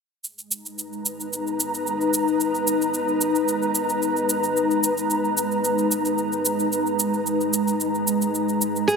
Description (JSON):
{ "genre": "organic downtempo", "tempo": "111 BPM", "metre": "4/4", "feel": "straight", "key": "G# minor", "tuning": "A4 = 440 Hz", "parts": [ { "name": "ethereal airy pad", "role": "sustained chords", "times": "0.9-9.0 s", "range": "G#3 to A#5", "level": "-21 LUFS", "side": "left 1 dB", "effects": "ensemble chorus, built-in reverb" }, { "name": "shaker", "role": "drums", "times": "0.2-9.0 s", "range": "none", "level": "-26 LUFS", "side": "right 2 dB", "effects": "none" }, { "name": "nylon-string guitar", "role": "arpeggios", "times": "8.9-9.0 s", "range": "G#4", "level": "-18 LUFS", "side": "right 2 dB", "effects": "none" } ], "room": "wet lush hall reverb, RT60 2.4 s", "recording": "none", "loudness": "-20 LUFS", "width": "side -5 dB against mid", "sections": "0.2-9.0 A section", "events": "none", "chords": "0.2 G#madd9" }